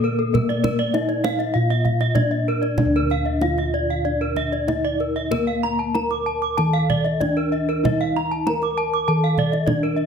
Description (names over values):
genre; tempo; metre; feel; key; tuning
Balinese gamelan; 96 BPM; 4/4; uneven beats; D pelog; A4 = 440 Hz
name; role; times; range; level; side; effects
gamelan-type bronze metallophone; melody; 0.0-10.1 s; Bb3 to Bb4; -25 LUFS; left 1 dB; none
gamelan-type bronze metallophone; arpeggios; 0.0-10.1 s; A4 to Bb5; -26 LUFS; left 6 dB; none
gamelan-type bronze metallophone; arpeggios; 0.0-10.0 s; Bb4 to D6; -26 LUFS; right 5 dB; none
gamelan-type bossed gongs; bass; 0.0-10.1 s; D2 to Bb4; -24 LUFS; equal; none
kendang; percussion; 0.3-10.0 s; none; -26 LUFS; right 3 dB; none
room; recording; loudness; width
light reverb; close, detailed microphones; -19 LUFS; side -6 dB against mid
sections
0.0-2.8 A section; 2.8-10.1 B section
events
none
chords
none